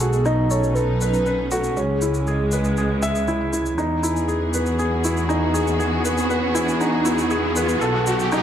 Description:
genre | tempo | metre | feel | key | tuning
piano and strings electronica | 119 BPM | 4/4 | straight | E major | A4 = 440 Hz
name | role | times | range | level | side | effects
warm velvety synth lead | melody | 0.0-3.3 s | G#4 to D#5 | -25 LUFS | equal | chorus, tremolo
warm studio string section | sustained chords | 0.0-8.4 s | B2 to G#4 | -25 LUFS | equal | none
felt-muted upright piano | riff | 0.0-8.4 s | C#4 to E5 | -23 LUFS | equal | digital delay
bright studio double bass section | bass | 0.0-8.4 s | B1 to E2 | -24 LUFS | equal | none
shaker | drums | 0.0-8.4 s | none | -32 LUFS | left 1 dB | overdrive, high-pass filter on perc, high-pass filter on room
riser | sound effects | 5.3-8.4 s | none | -28 LUFS | right 1 dB | none
room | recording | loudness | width
moderate concert hall reverb, RT60 2.0 s, studio reverb | dark, warm production, high-pass filter | -18 LUFS | side -9 dB against mid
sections
0.0-3.8 A section; 3.8-8.4 B section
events
build-up 3.8-8.4; riser 5.3-8.4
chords
0.0 B7; 1.8 C#m7; 3.8 Emaj7; 7.8 B7

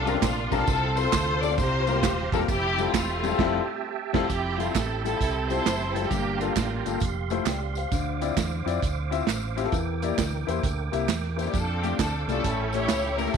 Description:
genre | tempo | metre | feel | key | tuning
uptempo gospel | 133 BPM | 4/4 | swing 66% on 8ths | F major | A4 = 440 Hz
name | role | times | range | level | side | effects
warm studio string section | melody | 0.0-7.0, 11.4-13.4 s | A3 to D5 | -28 LUFS | left 1 dB | none
dark upright piano | accompaniment | 0.0-13.3 s | G2 to G5 | -30 LUFS | left 12 dB | none
tonewheel organ | sustained chords | 0.0-13.3 s | G4 to D6 | -34 LUFS | right 12 dB | slow rotary speaker, chorus vibrato
fingered electric bass | bass | 0.0-13.4 s | Eb1 to F2 | -30 LUFS | right 1 dB | none
modern studio drum kit | drums | 0.1-13.4 s | crash cymbal, hi-hat, kick drum, ride cymbal, snare drum | -29 LUFS | right 5 dB | none
tambourine and handclaps | percussion | 0.1-13.3 s | none | -37 LUFS | right 3 dB | none
room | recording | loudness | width
light reverb, small room ambience | 1960s-style stereo with parts hard left and right | -23 LUFS | side -6 dB against mid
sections
0.0-4.3 A section; 4.3-13.4 B section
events
band accent 3.4-4.3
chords
0.0 C9sus4; 0.7 F/C; 1.6 C7sus4; 2.5 Fmaj9; 6.1 Gm9; 7.0 Fmaj7; 7.9 Dm9; 9.7 Em7b5; 11.5 F69; 12.4 A7

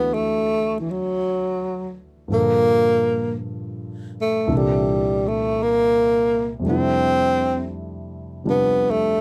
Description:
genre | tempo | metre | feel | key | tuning
jazz | 55 BPM | 4/4 | swing 68% on 8ths | unclear | A4 = 440 Hz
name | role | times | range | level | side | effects
breathy tenor saxophone | melody | 0.0-9.2 s | E3 to C4 | -21 LUFS | equal | none
warm grand piano | accompaniment | 0.0-9.2 s | C2 to A4 | -27 LUFS | equal | none
room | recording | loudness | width
light reverb | close, detailed microphones | -21 LUFS | mono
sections
0.0-9.2 A section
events
none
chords
0.0 Dmaj9; 2.3 Gm7; 4.5 C13; 6.7 Fmaj13

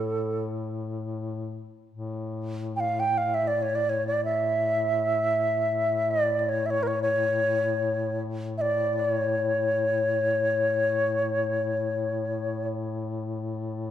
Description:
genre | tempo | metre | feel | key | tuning
caucasian folk, Caucasian lament | free time | none | none | A major | A4 = 440 Hz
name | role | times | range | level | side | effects
wooden flute | melody | 0.0-12.7 s | A4 to G5 | -24 LUFS | equal | none
mellow duduk | drone | 0.0-13.9 s | A2 | -31 LUFS | left 3 dB | none
room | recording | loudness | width
moderate scoring stage reverb, RT60 1.9 s | none | -24 LUFS | side -10 dB against mid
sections
0.0-1.9 A section; 1.9-13.9 A section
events
none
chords
none

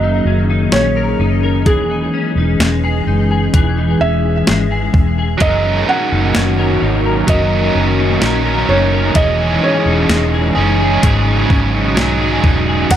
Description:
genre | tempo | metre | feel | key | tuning
dream pop | 64 BPM | 4/4 | straight | F# mixolydian | A4 = 440 Hz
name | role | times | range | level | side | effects
felt-muted upright piano | melody | 0.0-13.0 s | G#4 to F#5 | -20 LUFS | right 3 dB | digital delay
warbly tape-like pad | sustained chords | 0.0-13.0 s | D#3 to G#4 | -20 LUFS | left 1 dB | chorus, built-in reverb
clean electric guitar | arpeggios | 0.0-13.0 s | G#2 to A#4 | -20 LUFS | left 4 dB | ensemble chorus, digital delay
vintage muted fingered electric bass | bass | 0.0-13.0 s | E1 to B1 | -17 LUFS | equal | none
crisp 8-bit digital drum machine | drums | 0.7-13.0 s | crash cymbal, hi-hat, kick drum, snare drum | -14 LUFS | equal | none
overdriven electric guitar | accompaniment | 5.4-13.0 s | G#2 to A#4 | -17 LUFS | right 4 dB | tremolo, wide subtle chorus
room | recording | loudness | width
light reverb | none | -12 LUFS | side -10 dB against mid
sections
0.0-12.9 A section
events
none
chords
0.0 F#6; 1.7 C#madd9/E; 5.4 F#6; 9.2 C#madd9/E; 11.0 G#7sus4

